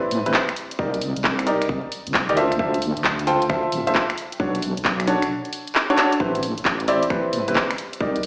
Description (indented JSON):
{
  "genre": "UK garage, two-step garage",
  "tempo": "133 BPM",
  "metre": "4/4",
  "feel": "swing 66% on 16ths",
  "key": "unclear",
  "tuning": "A4 = 441 Hz",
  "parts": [
    { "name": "clear concert grand piano", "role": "stabs", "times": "0.0-8.2 s", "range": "C4 to G5", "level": "-22 LUFS", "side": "equal", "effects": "dub echo" },
    { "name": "deep soft wobble bass", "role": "bass", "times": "0.1-8.3 s", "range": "D1 to A2", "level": "-26 LUFS", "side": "equal", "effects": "chorus, sidechain pumping" },
    { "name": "garage drum kit", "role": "drums", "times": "0.1-8.3 s", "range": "finger snaps, handclaps, hi-hat", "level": "-22 LUFS", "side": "equal", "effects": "none" },
    { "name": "electronic kick drum", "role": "drums", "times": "0.3-8.1 s", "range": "none", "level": "-27 LUFS", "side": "equal", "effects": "none" }
  ],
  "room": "wet studio reverb, RT60 0.6 s",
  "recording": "played on a big sound system in a bare room, large studio reverb, vinyl crackle, small speaker sound",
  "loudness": "-19 LUFS",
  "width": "side -34 dB against mid",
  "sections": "0.0-8.3 A section",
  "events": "drum fill 6.0",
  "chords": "0.0 Am7; 0.6 Cm7; 2.4 Dm7; 4.4 Bm7; 6.2 Am7"
}